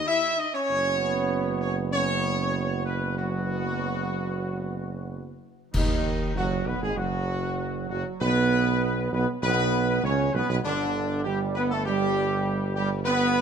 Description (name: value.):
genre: classical, ceremonial fanfare.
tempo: 98 BPM.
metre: 4/4.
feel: straight.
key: B major.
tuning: A4 = 440 Hz.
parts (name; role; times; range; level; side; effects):
warm trumpet section; melody; 0.0-13.4 s; D4 to E5; -28 LUFS; left 1 dB; none.
clear French horn section; sustained chords; 0.0-13.4 s; D3 to E4; -34 LUFS; left 5 dB; none.
mellow trombone section; sustained chords; 0.7-13.4 s; D3 to C#4; -29 LUFS; right 6 dB; none.
warm tuba; bass; 0.7-13.4 s; F#1 to D#2; -29 LUFS; right 4 dB; none.
clash cymbals and concert bass drum; percussion; 5.7-6.9 s; none; -30 LUFS; left 1 dB; none.
room: moderate scoring stage reverb, RT60 2.0 s.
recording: none.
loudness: -24 LUFS.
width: side -7 dB against mid.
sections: 0.0-5.7 A section; 5.7-13.4 B section.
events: band accent 5.7-6.4.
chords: 0.0 N.C.; 0.7 F#sus4; 5.7 B; 10.7 G.